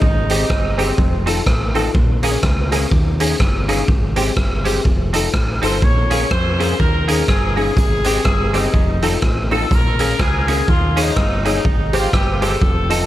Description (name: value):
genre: ska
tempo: 124 BPM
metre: 4/4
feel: swing 59% on 8ths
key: Ab major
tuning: A4 = 440 Hz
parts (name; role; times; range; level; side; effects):
- clear horn section; melody; 0.0-1.3, 5.6-13.1 s; C4 to Db5; -22 LUFS; equal; tape echo, plate reverb
- fingered electric bass; bass; 0.0-13.0 s; F1 to F2; -20 LUFS; equal; none
- raw garage drum kit; drums; 0.0-13.0 s; hi-hat, kick drum, rim click; -18 LUFS; equal; none
- clean electric guitar; accompaniment; 0.3-13.0 s; Ab3 to A4; -24 LUFS; right 6 dB; ensemble chorus, plate reverb
- dark upright piano; stabs; 0.3-13.0 s; C4 to Eb5; -23 LUFS; left 5 dB; tape echo, plate reverb
room: light reverb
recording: none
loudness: -14 LUFS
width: side -14 dB against mid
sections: 0.0-13.1 A section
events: none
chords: 0.0 Abmaj7; 1.0 F7; 1.9 Bbm7; 2.9 Eb7sus4; 3.9 Abmaj7; 4.9 F7; 5.8 Bbm7; 6.8 Eb7sus4; 7.8 Abmaj7; 8.7 F7; 9.7 Bbm7; 10.7 Eb7sus4; 11.7 Abmaj7